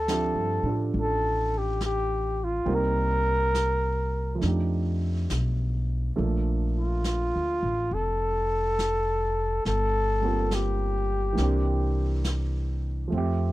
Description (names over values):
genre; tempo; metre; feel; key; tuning
jazz ballad; 69 BPM; 4/4; swing 67% on 8ths; unclear; A4 = 440 Hz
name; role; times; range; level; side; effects
trumpet with bucket mute; melody; 0.0-12.2 s; F4 to Bb4; -27 LUFS; left 1 dB; none
warm grand piano; accompaniment; 0.0-13.5 s; E3 to E5; -31 LUFS; right 4 dB; none
upright bass; bass; 0.0-13.5 s; F1 to A2; -27 LUFS; equal; none
vintage brush drum kit; drums; 0.1-13.5 s; brushed snare drum, hi-hat, snare drum; -37 LUFS; equal; none
room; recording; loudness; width
little or no reverb; dry, close 1970s-style studio recording; -24 LUFS; side -17 dB against mid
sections
0.0-13.5 A section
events
none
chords
0.0 Dm11; 2.6 Cm7; 4.4 F13; 6.1 Bbmaj7; 9.6 Gm11; 11.4 C9